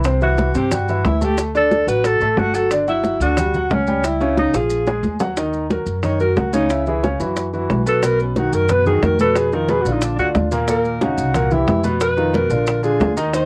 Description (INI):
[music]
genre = Afro-Cuban jazz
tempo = 180 BPM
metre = 4/4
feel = straight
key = Eb minor from 5.4 s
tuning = A4 = 440 Hz
[part]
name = warm grand piano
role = accompaniment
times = 0.0-13.5 s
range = Bb2 to A5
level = -23 LUFS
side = equal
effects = cassette tape
[part]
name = upright bass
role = bass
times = 0.0-13.5 s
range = G1 to G2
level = -25 LUFS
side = equal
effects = none
[part]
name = maracas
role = percussion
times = 0.0-13.5 s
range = none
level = -38 LUFS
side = equal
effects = none
[part]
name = bongos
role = percussion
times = 0.1-13.5 s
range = none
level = -26 LUFS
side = equal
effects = none
[part]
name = congas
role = percussion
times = 0.1-13.5 s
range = none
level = -28 LUFS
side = equal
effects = none
[part]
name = warm alto saxophone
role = melody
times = 0.2-13.5 s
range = Db4 to Db5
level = -22 LUFS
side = equal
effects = none
[sound]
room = moderate booth ambience, RT60 0.2 s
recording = home recording on cassette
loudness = -18 LUFS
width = mono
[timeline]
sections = 0.0-5.4 A section; 5.4-13.5 B section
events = drum fill 4.5-5.4; alto saxophone solo 5.4-13.5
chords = 0.1 C69; 1.4 D; 2.7 G5; 4.0 C#dim; 4.7 A#5; 5.4 Ebm7; 6.7 Dbmadd11; 7.4 B7sus4; 8.0 B; 9.4 Bb7b9; 10.0 Bb; 10.7 Ebm7; 11.3 C7; 12.0 Bmaj7#11; 12.7 Bb7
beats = | 0.05 0.38 0.72 1.05 | 1.38 1.72 2.05 2.38 | 2.71 3.04 3.38 3.71 | 4.04 4.38 4.71 5.04 | 5.37 5.71 6.04 6.37 | 6.70 7.03 7.37 7.70 | 8.03 8.36 8.70 9.03 | 9.36 9.69 10.02 10.36 | 10.69 11.02 11.35 11.68 | 12.01 12.35 12.68 13.01 | 13.34